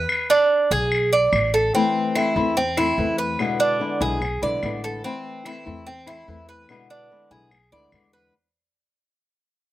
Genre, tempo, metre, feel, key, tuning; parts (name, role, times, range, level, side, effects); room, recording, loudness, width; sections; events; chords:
latin, Cuban son and guajira; 145 BPM; 4/4; straight; A harmonic minor; A4 = 438 Hz
Cuban tres; arpeggios; 0.0-8.3 s; C4 to D5; -21 LUFS; right 2 dB
upright bass; bass; 0.0-8.3 s; A1 to E2; -29 LUFS; equal
claves; percussion; 0.1-8.1 s; -28 LUFS; left 3 dB; slapback echo
flamenco guitar; accompaniment; 1.7-8.3 s; B2 to E4; -25 LUFS; left 4 dB
little or no reverb; recorded outdoors, with no room sound; -19 LUFS; side -14 dB against mid
0.0-8.3 A section
fade-out 0.0-8.3
0.1 Asus24; 1.7 Am; 3.4 E7; 5.0 Am; 6.7 E7